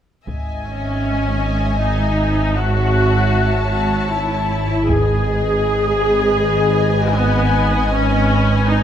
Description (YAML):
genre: cinematic, suspense film score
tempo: free time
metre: none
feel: none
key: G# phrygian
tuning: A4 = 440 Hz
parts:
  - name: muted studio violin section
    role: melody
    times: 0.3-8.8 s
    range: G#5 to A5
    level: -25 LUFS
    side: left 5 dB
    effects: none
  - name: muted symphonic violin section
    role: second line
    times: 0.3-8.8 s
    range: B4 to E5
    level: -26 LUFS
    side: left 1 dB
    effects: none
  - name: muted chamber cello section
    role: bass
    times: 0.3-8.8 s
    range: G#2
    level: -24 LUFS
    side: right 3 dB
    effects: none
  - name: muted symphonic double bass section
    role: bass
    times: 0.3-8.8 s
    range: G#1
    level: -22 LUFS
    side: right 2 dB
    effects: none
  - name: analog drone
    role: drone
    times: 0.7-8.8 s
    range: G#1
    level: -22 LUFS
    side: equal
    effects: chorus
  - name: taiko ensemble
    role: drums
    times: 0.3-6.4 s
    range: none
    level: -25 LUFS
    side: equal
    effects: none
  - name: muted symphonic viola section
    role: accompaniment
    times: 0.7-8.8 s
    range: B3 to G#4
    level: -19 LUFS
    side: left 1 dB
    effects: none
room: light reverb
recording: close, detailed microphones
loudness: -15 LUFS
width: side -9 dB against mid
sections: 0.3-8.8 A section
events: none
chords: 0.3 C#madd9/G#; 2.6 A/G#; 4.9 G#m